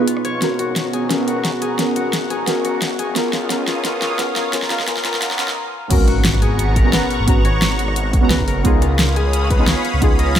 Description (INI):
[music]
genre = liquid drum and bass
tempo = 175 BPM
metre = 4/4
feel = swing 53% on 16ths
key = G# dorian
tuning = A4 = 439 Hz
[part]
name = deep mellow chord stab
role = accompaniment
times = 0.0-10.4 s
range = B3 to A#5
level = -22 LUFS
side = right 1 dB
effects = chorus, vintage 12-bit sampler grit, tape echo
[part]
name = lush unison pad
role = sustained chords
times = 0.0-10.4 s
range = B3 to D#6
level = -25 LUFS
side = right 2 dB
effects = chorus, phaser, sidechain pumping
[part]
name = concert harp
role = arpeggios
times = 0.0-10.4 s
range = E#4 to D#5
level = -26 LUFS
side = left 5 dB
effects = tape echo
[part]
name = electronic kick drum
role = drums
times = 0.1-10.1 s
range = none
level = -17 LUFS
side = equal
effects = high-pass filter on kick
[part]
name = pop drum kit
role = drums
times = 0.1-10.4 s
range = crash cymbal, hi-hat, rim click, snare drum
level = -21 LUFS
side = equal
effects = none
[part]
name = swelling detuned saw bass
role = bass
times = 0.2-10.4 s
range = F#1 to E#2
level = -22 LUFS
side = equal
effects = high-pass filter
[part]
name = impact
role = sound effects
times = 5.9-7.3 s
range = none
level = -22 LUFS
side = equal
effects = none
[sound]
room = light reverb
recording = high-pass filter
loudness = -15 LUFS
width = side -10 dB against mid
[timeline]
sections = 0.0-5.9 A section; 5.9-10.4 B section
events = build-up 0.0-5.9; filter sweep on synth stab 0.0-5.9; filter sweep on analog synth pad 0.0-5.9; filter sweep 0.0-5.9; drum fill 0.4-5.6; stop 5.6-5.9; drop 5.9-10.4; impact 5.9-7.3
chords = 0.4 G#m11; 3.2 C#9; 5.9 G#m11; 8.6 C#9